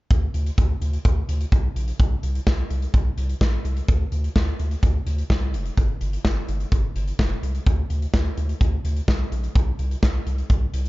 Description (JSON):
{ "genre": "synth-pop", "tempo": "127 BPM", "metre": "4/4", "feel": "straight", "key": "D minor", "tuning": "A4 = 444 Hz", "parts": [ { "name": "round analog bass", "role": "bass", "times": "0.1-10.9 s", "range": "F1 to D2", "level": "-24 LUFS", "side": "equal", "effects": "none" }, { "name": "modern studio drum kit", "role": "drums", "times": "0.1-10.9 s", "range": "hi-hat, kick drum, snare drum", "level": "-22 LUFS", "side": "equal", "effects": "none" } ], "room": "little or no reverb", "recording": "dark, warm production, nothing above 7.5 kHz", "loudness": "-20 LUFS", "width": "side -20 dB against mid", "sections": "0.1-10.9 A section", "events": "none", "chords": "none" }